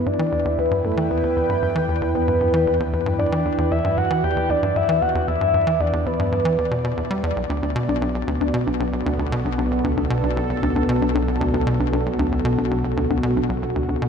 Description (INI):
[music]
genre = ambient, sequencer-driven space music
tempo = 115 BPM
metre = 4/4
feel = straight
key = E minor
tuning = A4 = 440 Hz
[part]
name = soft octave-layered synth lead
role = melody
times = 0.0-7.1 s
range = A4 to G5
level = -22 LUFS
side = equal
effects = chorus, phaser, ping-pong delay
[part]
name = sweeping resonant pad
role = sustained chords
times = 0.0-14.1 s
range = B3 to G5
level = -25 LUFS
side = right 1 dB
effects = chorus
[part]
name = tight sequencer bass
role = riff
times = 0.0-14.1 s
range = B1 to G3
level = -24 LUFS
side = equal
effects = ping-pong delay
[part]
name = analog drone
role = bass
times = 0.7-14.1 s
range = B1 to E2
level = -28 LUFS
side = equal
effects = chorus
[part]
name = warbly dusty pluck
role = arpeggios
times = 7.5-14.0 s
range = D4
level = -27 LUFS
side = left 3 dB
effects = chorus, auto-pan, ping-pong delay
[sound]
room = wet scoring stage reverb, RT60 2.1 s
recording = none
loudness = -19 LUFS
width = side -6 dB against mid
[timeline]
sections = 0.0-14.1 A section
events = none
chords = 0.0 Em7; 7.4 Bm7